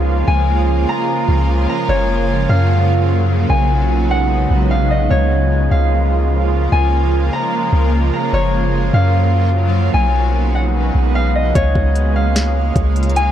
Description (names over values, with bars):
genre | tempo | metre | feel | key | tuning
hip hop, atmospheric cloud-rap | 149 BPM | 4/4 | half-time | Db mixolydian | A4 = 437 Hz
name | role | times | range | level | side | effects
Celtic harp | melody | 0.0-13.3 s | Db5 to Bb5 | -20 LUFS | left 1 dB | digital delay
shimmering ambient pad | sustained chords | 0.0-13.3 s | Db3 to F5 | -19 LUFS | right 2 dB | chorus, built-in reverb, sidechain pumping
long sustained 808-style bass | bass | 0.0-13.3 s | Gb1 to Gb2 | -15 LUFS | equal | none
smooth R&B drum kit | drums | 11.6-13.3 s | hi-hat, kick drum, snare drum | -18 LUFS | equal | overdrive
backwards swelling texture | texture | 12.3-13.3 s | Bb3 to Db5 | -33 LUFS | right 3 dB | none
room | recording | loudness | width
digital ambience | worn, warbling old tape, cassette tape, warbly pitch drift | -13 LUFS | side -10 dB against mid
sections
0.0-13.3 A section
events
none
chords
0.0 Db6; 1.9 Gbmaj7; 3.5 Cb69; 5.1 Db6; 8.3 Gbmaj7; 9.9 Cb69; 11.6 Db6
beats
| 0.28 0.68 1.08 1.49 | 1.89 2.29 2.69 3.10 | 3.50 3.90 4.30 4.71 | 5.11 5.51 5.91 6.32 | 6.72 7.12 7.53 7.93 | 8.33 8.73 9.14 9.54 | 9.94 10.34 10.75 11.15 | 11.55 11.96 12.36 12.76 | 13.16